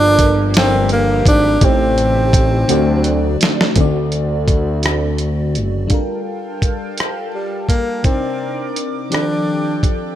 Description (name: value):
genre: slow six-eight R&B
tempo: 56 BPM (dotted quarters)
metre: 6/8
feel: straight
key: G minor from 5.9 s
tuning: A4 = 444 Hz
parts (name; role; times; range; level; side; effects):
- breathy tenor saxophone; melody; 0.0-3.4, 7.3-9.9 s; G3 to D4; -17 LUFS; equal; digital delay
- FM electric piano with soft pad layer; accompaniment; 0.0-10.2 s; A2 to D5; -22 LUFS; left 1 dB; chorus, phaser
- chorused pulse-width pad; sustained chords; 0.0-10.2 s; C3 to D6; -27 LUFS; equal; none
- fat analog bass; bass; 0.0-5.9 s; F#1 to D2; -17 LUFS; equal; none
- dusty soul sampler-style drum kit; drums; 0.2-10.0 s; hi-hat, kick drum, rim click, snare drum; -15 LUFS; equal; none
room: digital ambience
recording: none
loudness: -14 LUFS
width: side -12 dB against mid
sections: 0.0-3.8 A section; 3.8-5.9 B section; 5.9-10.2 C section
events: drum fill 2.7-3.8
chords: 0.0 Gm7; 1.6 Am7b5; 2.7 D7; 5.9 Gm9; 8.0 Cm9; 9.1 F13